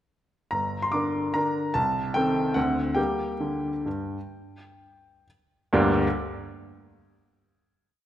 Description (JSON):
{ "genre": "classical, piano waltz", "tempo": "120-154 BPM", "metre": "3/4", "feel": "rubato", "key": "G minor", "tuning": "A4 = 440 Hz", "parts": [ { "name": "clear baby grand piano", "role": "solo", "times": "0.5-6.1 s", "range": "G1 to D6", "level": "-24 LUFS", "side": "equal", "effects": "none" } ], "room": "moderate recital hall reverb, RT60 1.6 s", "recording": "none", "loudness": "-24 LUFS", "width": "side -12 dB against mid", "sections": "0.5-5.7 A section; 5.7-7.1 final chord", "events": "slowing down 2.4-5.7", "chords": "0.5 Gm; 1.8 Adim/C; 2.6 D7; 3.0 Gm", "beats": "| 0.53 0.95 1.36 | 1.76 2.16 2.57 | 2.98 3.42 3.86 | 4.30 4.76 5.25 | 5.73" }